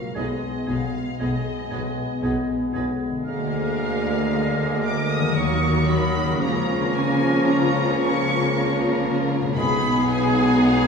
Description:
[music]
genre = classical, slow romantic movement for symphony orchestra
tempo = 57 BPM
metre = 3/4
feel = rubato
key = unclear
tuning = A4 = 444 Hz
[part]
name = rich studio violin section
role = second line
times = 0.0-10.9 s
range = Eb5 to Eb6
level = -30 LUFS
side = left 2 dB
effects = none
[part]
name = mellow French horn section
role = sustained chords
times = 0.0-10.9 s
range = F3 to Eb4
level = -28 LUFS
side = left 2 dB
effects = none
[part]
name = concert harp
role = arpeggios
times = 0.0-10.9 s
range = Cb3 to Cb5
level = -32 LUFS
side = left 5 dB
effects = none
[part]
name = hollow concert flute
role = second line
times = 0.1-10.9 s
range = Db6 to Ab6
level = -33 LUFS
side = right 1 dB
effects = none
[part]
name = warm studio cello section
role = bass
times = 0.1-10.9 s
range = Cb3 to Eb3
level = -28 LUFS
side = right 1 dB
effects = none
[part]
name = rich studio violin section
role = melody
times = 0.2-10.9 s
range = Ab4 to Cb5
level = -33 LUFS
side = left 2 dB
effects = none
[part]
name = clear oboe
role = second line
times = 0.2-10.9 s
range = Ab4 to Eb5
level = -33 LUFS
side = equal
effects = none
[part]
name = dark clarinet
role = second line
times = 0.2-10.9 s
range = Bb3 to Cb4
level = -30 LUFS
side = equal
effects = none
[part]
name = rich studio viola section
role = accompaniment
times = 0.2-10.9 s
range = Ab3 to Ab4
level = -29 LUFS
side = equal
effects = none
[part]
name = warm bassoon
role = accompaniment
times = 0.2-10.9 s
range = F3 to Ab3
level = -33 LUFS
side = equal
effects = none
[part]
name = clear tuba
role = bass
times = 0.2-10.9 s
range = Cb2 to Eb2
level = -29 LUFS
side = right 1 dB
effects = none
[part]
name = rich studio double bass section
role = bass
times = 0.2-10.9 s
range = Cb2 to Eb2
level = -29 LUFS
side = equal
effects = none
[sound]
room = wet scoring stage reverb, RT60 2.0 s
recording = heard from further back in the room, small room ambience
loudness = -20 LUFS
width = side -5 dB against mid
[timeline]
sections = 0.0-10.9 A section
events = none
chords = 0.1 Abm/Cb; 3.3 Bb7/D; 5.3 Ebm; 6.4 Bbm/Db; 9.6 Abm/Cb

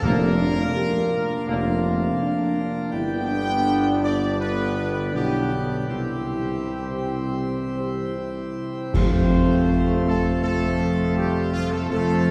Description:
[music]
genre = classical, ceremonial fanfare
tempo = 81 BPM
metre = 4/4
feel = straight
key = F major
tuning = A4 = 439 Hz
[part]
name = bright trumpet section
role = melody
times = 0.0-12.3 s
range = F4 to G5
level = -31 LUFS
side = equal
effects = none
[part]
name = bright trombone section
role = sustained chords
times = 0.0-12.3 s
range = D3 to C4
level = -34 LUFS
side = equal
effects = none
[part]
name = dark French horn section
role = sustained chords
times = 0.0-12.3 s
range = F3 to C5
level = -30 LUFS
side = equal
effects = none
[part]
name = pipe organ, plenum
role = sustained chords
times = 0.0-12.3 s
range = C3 to A4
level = -31 LUFS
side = equal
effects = none
[part]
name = mellow tuba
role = bass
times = 0.0-12.3 s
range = F1 to F2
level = -28 LUFS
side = equal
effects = none
[part]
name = timpani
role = percussion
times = 0.0-1.1, 8.9-10.0 s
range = F2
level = -31 LUFS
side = equal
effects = none
[part]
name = clash cymbals and concert bass drum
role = percussion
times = 8.9-10.4 s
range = none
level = -29 LUFS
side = equal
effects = none
[sound]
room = wet church reverb, RT60 3.7 s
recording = dark, warm production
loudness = -23 LUFS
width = mono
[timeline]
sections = 0.0-8.9 A section; 8.9-12.3 B section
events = band accent 8.9-9.7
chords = 0.0 Bb/F; 2.9 G; 5.9 C; 8.9 F

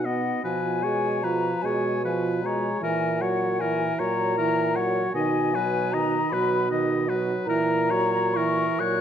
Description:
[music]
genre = classical, slow romantic movement for wind quintet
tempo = 51 BPM (dotted quarters)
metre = 6/8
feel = uneven beats, rubato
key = B major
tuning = A4 = 440 Hz
[part]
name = mellow hollow silver concert flute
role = melody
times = 0.0-9.0 s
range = F#5 to F#6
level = -28 LUFS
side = left 7 dB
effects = none
[part]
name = clear oboe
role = second line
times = 0.0-9.0 s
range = A#4 to D#5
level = -30 LUFS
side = left 2 dB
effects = none
[part]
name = clear French horn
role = accompaniment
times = 0.0-9.0 s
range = D#3 to B3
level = -30 LUFS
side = equal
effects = none
[part]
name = mellow clarinet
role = accompaniment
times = 0.0-9.0 s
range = D#4 to G#4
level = -30 LUFS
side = right 7 dB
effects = none
[part]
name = dark bassoon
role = bass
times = 0.0-9.0 s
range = A#2 to B2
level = -27 LUFS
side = right 2 dB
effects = none
[sound]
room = wet recital hall reverb, RT60 1.7 s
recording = dark, warm production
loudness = -22 LUFS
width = side -8 dB against mid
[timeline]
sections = 0.0-9.0 A section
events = none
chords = 0.4 C#7/B; 2.8 F#7/A#; 5.2 B; 7.5 F#7/A#

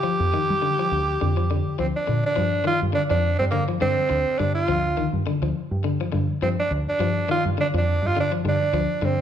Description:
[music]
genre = afrobeat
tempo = 104 BPM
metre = 4/4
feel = swing 56% on 16ths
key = unclear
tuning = A4 = 438 Hz
[part]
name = raspy tenor saxophone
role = melody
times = 0.0-9.2 s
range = Bb3 to G4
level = -23 LUFS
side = right 2 dB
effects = none
[part]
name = electric guitar at the edge of break-up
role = arpeggios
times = 0.0-9.2 s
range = D3 to F3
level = -27 LUFS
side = left 6 dB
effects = none
[part]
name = deep dub fingered electric bass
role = bass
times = 0.2-9.2 s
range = D2 to G3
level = -25 LUFS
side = right 1 dB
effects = none
[sound]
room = wet large studio reverb, RT60 1.3 s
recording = band playing live in one room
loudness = -20 LUFS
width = side -9 dB against mid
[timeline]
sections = 0.0-2.4 A section; 2.4-9.2 B section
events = none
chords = 0.0 G7(no3); 2.4 G5

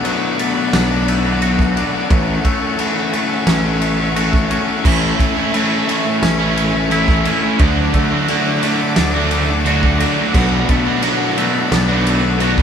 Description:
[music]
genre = post-rock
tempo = 87 BPM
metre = 4/4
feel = straight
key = unclear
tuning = A4 = 438 Hz
[part]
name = clear chamber string section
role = sustained chords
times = 0.0-12.6 s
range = A4 to D6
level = -28 LUFS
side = equal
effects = none
[part]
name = twangy electric guitar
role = arpeggios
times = 0.0-12.6 s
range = A2 to F#4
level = -24 LUFS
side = right 1 dB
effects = vibrato effect
[part]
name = crunchy overdriven guitar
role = riff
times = 0.0-12.6 s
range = B2 to A4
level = -18 LUFS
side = left 3 dB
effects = none
[part]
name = loose indie drum kit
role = drums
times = 0.0-12.6 s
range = crash cymbal, kick drum, ride cymbal, snare drum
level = -19 LUFS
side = equal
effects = none
[part]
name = modern bright picked electric bass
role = bass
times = 0.7-12.6 s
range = A1 to D2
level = -19 LUFS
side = equal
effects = none
[part]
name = distorted electric guitar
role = riff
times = 4.8-12.6 s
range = A2 to F#4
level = -20 LUFS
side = right 7 dB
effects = distortion
[sound]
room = moderate stone room reverb, RT60 1.1 s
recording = band playing live in one room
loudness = -13 LUFS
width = side -8 dB against mid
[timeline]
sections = 0.0-12.6 A section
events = none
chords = 0.0 Bm7; 2.1 F#m7/A; 4.9 Amaj7; 7.6 D; 10.4 Bm7

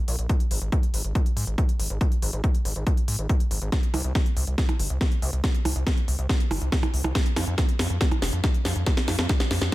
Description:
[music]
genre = uplifting trance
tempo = 140 BPM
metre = 4/4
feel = straight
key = unclear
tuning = A4 = 441 Hz
[part]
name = gritty driven synth bass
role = bass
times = 0.1-9.7 s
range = F1 to Ab2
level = -26 LUFS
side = equal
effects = sidechain pumping
[part]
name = techno drum kit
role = drums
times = 0.1-9.7 s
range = hi-hat, percussion blips, snare drum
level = -28 LUFS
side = right 1 dB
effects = none
[part]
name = electronic kick drum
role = drums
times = 0.3-9.7 s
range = none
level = -23 LUFS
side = equal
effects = none
[sound]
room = little or no reverb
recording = none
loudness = -22 LUFS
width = side -17 dB against mid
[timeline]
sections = 0.0-9.7 A section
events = build-up 0.0-9.7; drum fill 3.7-9.7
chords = none

